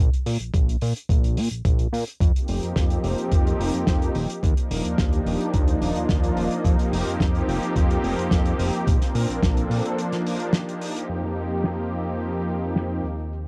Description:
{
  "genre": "nu-disco, nu disco",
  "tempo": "108 BPM",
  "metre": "4/4",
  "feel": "straight",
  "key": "unclear",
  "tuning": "A4 = 441 Hz",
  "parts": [
    { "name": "fat analog bass", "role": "bass", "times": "0.0-13.5 s", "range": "Eb1 to Bb2", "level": "-29 LUFS", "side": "equal", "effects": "none" },
    { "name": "damped 70s drum kit", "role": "drums", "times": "0.1-13.5 s", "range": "crash cymbal, hi-hat, shaker, snare drum", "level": "-32 LUFS", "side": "equal", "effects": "low-pass filter on hats, cassette tape, low-pass filter on cymbals, low-pass filter on snare, low-pass filter on perc, low-pass filter on room" },
    { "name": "electronic kick drum", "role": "drums", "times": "0.5-9.5 s", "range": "none", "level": "-24 LUFS", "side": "equal", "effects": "cassette tape" },
    { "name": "warm analog pad", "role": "accompaniment", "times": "2.4-13.5 s", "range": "F3 to A4", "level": "-28 LUFS", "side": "equal", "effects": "chorus, cassette tape, analog delay" }
  ],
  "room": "light reverb",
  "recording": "home recording on cassette",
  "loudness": "-23 LUFS",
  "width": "mono",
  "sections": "0.0-11.1 A section; 11.1-13.5 B section",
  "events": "break 10.0-11.1; band accent 10.5; filter sweep on drum 11.1-13.5",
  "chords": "0.0 N.C.; 2.2 F9sus4; 4.2 Ebmaj9; 6.7 F9sus4; 8.9 Bbmaj9; 10.0 Ebmaj9; 11.1 F9sus4"
}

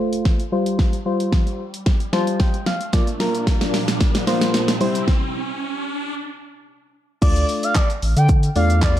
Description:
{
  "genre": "dance-pop",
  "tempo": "112 BPM",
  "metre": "4/4",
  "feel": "straight",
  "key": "D minor",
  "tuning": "A4 = 437 Hz",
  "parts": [
    { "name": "soft electric-piano-like synth keys", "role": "accompaniment", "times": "0.0-9.0 s", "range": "G3 to A5", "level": "-22 LUFS", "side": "left 1 dB", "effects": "chorus, sidechain pumping, low-pass filter" },
    { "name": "riser and impact", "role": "sound effects", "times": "0.0-6.1 s", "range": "none", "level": "-32 LUFS", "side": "right 1 dB", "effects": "none" },
    { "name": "pop drum kit", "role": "drums", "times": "0.1-9.0 s", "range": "crash cymbal, handclaps, hi-hat, kick drum, shaker, snare drum", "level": "-19 LUFS", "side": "equal", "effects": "none" },
    { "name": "phased string machine", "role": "sustained chords", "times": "2.9-5.1 s", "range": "Bb2 to E4", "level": "-28 LUFS", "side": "right 1 dB", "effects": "ensemble chorus, phaser, sidechain pumping, low-pass filter" },
    { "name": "expressive portamento lead", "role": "melody", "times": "7.2-9.0 s", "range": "D5 to G5", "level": "-23 LUFS", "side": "equal", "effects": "chorus, sidechain pumping, tape echo" },
    { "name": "saturated sub bass", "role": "bass", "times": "7.2-9.0 s", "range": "A1 to D3", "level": "-17 LUFS", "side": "equal", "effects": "sidechain pumping" }
  ],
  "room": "little or no reverb",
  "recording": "dark, warm production",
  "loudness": "-17 LUFS",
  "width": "side -12 dB against mid",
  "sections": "0.0-7.2 A section; 7.2-9.0 B section",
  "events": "build-up 0.0-7.2; drum fill 0.0-5.1; impact 0.0-0.8; riser 0.0-7.2; filter sweep 0.0-7.2; synth keys fill 1.9-2.9; stop 5.1-7.2; drop 7.2-9.0",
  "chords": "0.0 Dm (rootless); 0.5 Fsus2; 2.9 Bb; 4.8 C; 7.2 Dm"
}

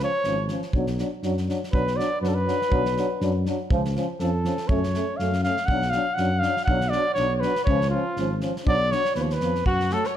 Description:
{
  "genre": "balkan folk, Balkan brass band",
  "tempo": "121 BPM",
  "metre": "2/4",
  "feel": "swing 56% on 16ths",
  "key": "B dorian sharp4",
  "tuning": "A4 = 440 Hz",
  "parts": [
    { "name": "mellow cornet", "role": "melody", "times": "0.0-10.2 s", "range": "E#4 to F#5", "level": "-25 LUFS", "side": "equal", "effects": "none" },
    { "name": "clear euphonium", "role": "accompaniment", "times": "0.0-10.0 s", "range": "E#3 to A3", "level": "-31 LUFS", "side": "right 4 dB", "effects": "none" },
    { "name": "warm euphonium", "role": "accompaniment", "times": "0.0-10.0 s", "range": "A3 to D4", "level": "-32 LUFS", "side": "left 7 dB", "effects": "none" },
    { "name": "dark tuba", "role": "bass", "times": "0.0-9.9 s", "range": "G#1 to F#2", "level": "-27 LUFS", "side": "equal", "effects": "none" },
    { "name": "loose indie drum kit", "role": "percussion", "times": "0.2-10.1 s", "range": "kick drum, snare drum", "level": "-29 LUFS", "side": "equal", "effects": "none" },
    { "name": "bright alto saxophone", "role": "second line", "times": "9.7-10.2 s", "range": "F#4 to C#5", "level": "-32 LUFS", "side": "left 4 dB", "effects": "none" }
  ],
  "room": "moderate recital hall reverb, RT60 1.6 s",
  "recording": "dark, warm production",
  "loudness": "-21 LUFS",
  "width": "side -10 dB against mid",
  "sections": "0.0-9.7 A section",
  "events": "cornet solo 0.0-9.7",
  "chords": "0.0 C#; 0.7 Bm; 3.7 C#; 4.7 F#m; 5.7 Bm; 7.7 C#; 8.7 Bm; 9.2 C#9/D#; 9.7 F#m"
}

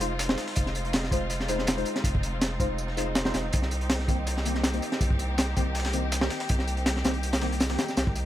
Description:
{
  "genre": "drum and bass, jungle",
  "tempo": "162 BPM",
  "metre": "4/4",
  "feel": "swing 53% on 16ths",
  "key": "F minor",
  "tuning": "A4 = 438 Hz",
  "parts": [
    { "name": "rich studio string section", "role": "sustained chords", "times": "0.0-8.3 s", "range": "Ab3 to G4", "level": "-34 LUFS", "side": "equal", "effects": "none" },
    { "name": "deep mellow chord stab", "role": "stabs", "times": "0.0-8.3 s", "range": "Eb3 to C5", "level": "-34 LUFS", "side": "left 2 dB", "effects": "wide subtle chorus, dub echo" },
    { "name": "saturated sub bass", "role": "bass", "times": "0.0-8.3 s", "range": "F1 to C2", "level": "-30 LUFS", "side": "equal", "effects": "none" },
    { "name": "breakbeat sampler-style drum kit", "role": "drums", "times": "0.0-8.2 s", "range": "hi-hat, snare drum, tambourine", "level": "-37 LUFS", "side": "equal", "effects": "high-pass filter on snare, high-pass filter on hats, high-pass filter on perc" },
    { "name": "crunchy breakbeat drum kit", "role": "drums", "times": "0.0-8.2 s", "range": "hi-hat, kick drum, snare drum", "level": "-27 LUFS", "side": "equal", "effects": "none" }
  ],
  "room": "small room ambience",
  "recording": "none",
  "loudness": "-25 LUFS",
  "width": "side -13 dB against mid",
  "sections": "0.0-8.3 A section",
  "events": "none",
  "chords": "0.0 Fm7; 3.5 Cm7"
}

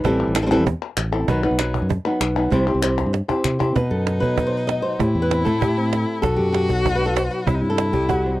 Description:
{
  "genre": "flamenco",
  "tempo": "194 BPM",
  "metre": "4/4",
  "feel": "straight",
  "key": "B phrygian dominant",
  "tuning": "A4 = 440 Hz",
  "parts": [
    { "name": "flamenco guitar", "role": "melody", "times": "0.0-8.4 s", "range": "A2 to D#5", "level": "-21 LUFS", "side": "equal", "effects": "none" },
    { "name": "fingered electric bass", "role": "bass", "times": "0.0-8.4 s", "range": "A1 to C3", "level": "-23 LUFS", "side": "equal", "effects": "none" },
    { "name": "cajon", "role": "percussion", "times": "0.0-8.2 s", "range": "none", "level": "-25 LUFS", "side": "right 5 dB", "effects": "none" },
    { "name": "palmas hand claps", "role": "percussion", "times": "0.2-3.8 s", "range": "none", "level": "-28 LUFS", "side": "left 8 dB", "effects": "none" },
    { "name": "dark violin", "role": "second line", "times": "3.8-8.4 s", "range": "D#4 to F#4", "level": "-25 LUFS", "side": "left 3 dB", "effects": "none" }
  ],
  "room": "little or no reverb",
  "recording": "dry, close 1970s-style studio recording",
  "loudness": "-18 LUFS",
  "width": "side -16 dB against mid",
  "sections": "0.0-3.8 A section; 3.8-8.4 B section",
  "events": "drum fill 3.1-3.8",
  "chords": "0.0 Am7; 1.3 B; 2.5 C; 3.8 B; 5.0 Am7; 6.2 B; 7.5 C"
}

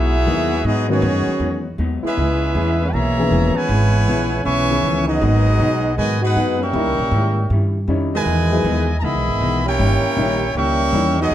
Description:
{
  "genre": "jazz, big band swing",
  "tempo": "158 BPM",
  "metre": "4/4",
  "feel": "swing 65% on 8ths",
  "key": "G# minor",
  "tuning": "A4 = 444 Hz",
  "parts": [
    { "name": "bright trumpet section", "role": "melody", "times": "0.0-11.3 s", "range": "B3 to C#6", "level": "-21 LUFS", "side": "right 1 dB", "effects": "plate reverb" },
    { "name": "warm trombone section", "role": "second line", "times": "0.0-11.3 s", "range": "B2 to G4", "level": "-22 LUFS", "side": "right 1 dB", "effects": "none" },
    { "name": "vintage hollow-body jazz guitar", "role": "accompaniment", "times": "0.0-11.3 s", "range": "G#2 to G#4", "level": "-27 LUFS", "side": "left 4 dB", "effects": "none" },
    { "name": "upright bass", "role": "bass", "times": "0.0-11.3 s", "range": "E1 to G#2", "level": "-20 LUFS", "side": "equal", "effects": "none" },
    { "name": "warm baby grand piano", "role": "accompaniment", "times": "0.3-11.2 s", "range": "D#3 to C#5", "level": "-23 LUFS", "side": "left 3 dB", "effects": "none" }
  ],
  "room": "moderate large studio reverb, RT60 0.9 s",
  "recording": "dark, warm production",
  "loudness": "-16 LUFS",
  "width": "side -12 dB against mid",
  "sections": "0.0-11.3 A section",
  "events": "none",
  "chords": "0.0 G#m7; 2.2 C#m7; 5.2 G#m7; 6.7 D#7b9; 8.3 Emaj7; 9.8 D#7b9"
}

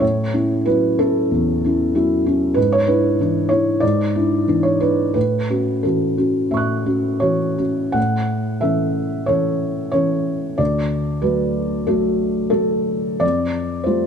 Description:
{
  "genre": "neoclassical minimalist piano",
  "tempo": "79-97 BPM",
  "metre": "4/4",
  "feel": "rubato",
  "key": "A major",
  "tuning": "A4 = 440 Hz",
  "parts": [
    { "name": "felt-muted upright piano", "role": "solo", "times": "0.0-14.1 s", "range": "D2 to F#6", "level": "-16 LUFS", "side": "equal", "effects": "none" }
  ],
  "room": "moderate recital hall reverb, RT60 1.7 s",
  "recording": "none",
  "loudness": "-16 LUFS",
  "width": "side -7 dB against mid",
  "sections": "0.0-8.0 A section; 8.0-14.1 B section",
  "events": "none",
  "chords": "0.0 A6; 2.6 E7/G#; 5.2 F#m7/A; 8.0 A; 10.6 D; 13.2 Fadd9"
}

